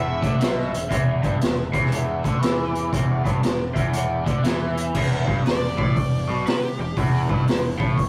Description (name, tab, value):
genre	blues rock power trio and southern rock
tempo	119 BPM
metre	4/4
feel	swing 65% on 8ths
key	unclear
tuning	A4 = 441 Hz
part	overdriven slide guitar	melody	0.0-8.1 s	E4 to E5	-35 LUFS	equal	none
part	raw garage guitar	riff	0.0-8.1 s	E2 to E3	-29 LUFS	equal	overdrive, phaser
part	fuzz fingered electric bass	bass	0.0-8.1 s	E1 to E2	-31 LUFS	equal	overdrive
part	raw garage drum kit	drums	0.2-8.1 s	crash cymbal, hi-hat, kick drum, snare drum	-24 LUFS	equal	none
room	light reverb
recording	rough rehearsal-room recording, warm saturation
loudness	-22 LUFS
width	mono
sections	0.0-4.9 A section; 4.9-8.1 B section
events	electric slide guitar solo 4.9-8.1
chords	0.0 E5; 4.9 N.C.